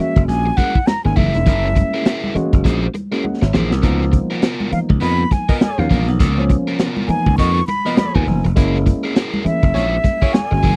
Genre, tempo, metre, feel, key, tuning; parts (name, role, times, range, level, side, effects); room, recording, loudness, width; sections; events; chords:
funk; 101 BPM; 4/4; swing 60% on 16ths; A4 = 440 Hz
breathy concert flute; melody; 0.0-10.8 s; Fb5 to Db6; -23 LUFS; equal
crunchy overdriven guitar; accompaniment; 0.0-10.8 s; Cb4 to C5; -27 LUFS; equal
mellow tine electric piano; stabs; 0.0-10.7 s; F3 to Gb5; -25 LUFS; equal; overdrive, subtle chorus
slap bass; bass; 0.0-10.8 s; Fb1 to F2; -20 LUFS; equal
crunchy breakbeat drum kit; drums; 0.2-10.8 s; hi-hat, kick drum, snare drum; -18 LUFS; equal
congas; percussion; 0.5-10.8 s; -28 LUFS; equal
warm horn section; second line; 5.0-10.6 s; Bb3 to Eb5; -29 LUFS; equal
little or no reverb; dry, close 1970s-style studio recording; -17 LUFS; mono
0.0-10.8 A section
drum fill 3.2-3.8
0.0 Gb9; 3.8 Db13; 8.6 Gb9